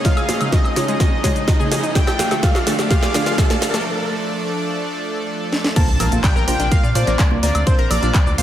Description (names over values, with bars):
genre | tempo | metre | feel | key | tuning
progressive house | 126 BPM | 4/4 | straight | Bb major | A4 = 439 Hz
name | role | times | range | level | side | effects
plucky unison lead | melody | 0.0-8.4 s | C5 to A5 | -24 LUFS | equal | cassette tape, sidechain pumping, tape echo
supersaw pad | sustained chords | 0.0-8.4 s | C3 to Eb5 | -26 LUFS | equal | sidechain pumping
analog pluck | arpeggios | 0.0-8.4 s | Ab3 to A5 | -27 LUFS | left 1 dB | chorus, sidechain pumping, tape echo
deep mellow chord stab | stabs | 0.0-8.4 s | Bb2 to G5 | -26 LUFS | right 1 dB | chorus, phaser, sidechain pumping, tape echo
electronic kick drum | drums | 0.0-8.2 s | none | -17 LUFS | equal | none
house drum kit | drums | 0.0-8.4 s | crash cymbal, handclaps, hi-hat, shaker, snare drum, woodblock | -22 LUFS | equal | overdrive
riser and impact | sound effects | 0.0-7.7 s | none | -27 LUFS | right 1 dB | none
congas | percussion | 0.3-8.0 s | none | -30 LUFS | right 5 dB | overdrive, sidechain pumping on perc
tight sequencer bass | bass | 5.9-8.4 s | Bb1 to Bb2 | -20 LUFS | equal | sidechain pumping
room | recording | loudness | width
moderate plate reverb, RT60 1.4 s, digital ambience | dreamy mix soaked in reverb | -15 LUFS | side -11 dB against mid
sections
0.0-5.8 A section; 5.8-8.4 B section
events
build-up 0.0-5.8; drum fill 0.0-3.9, 5.5; riser 0.0-3.9; break 3.9-5.8; drop 5.8-8.4; impact 5.8-7.7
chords
0.0 Dbadd9; 2.0 Dm; 5.8 Bbadd9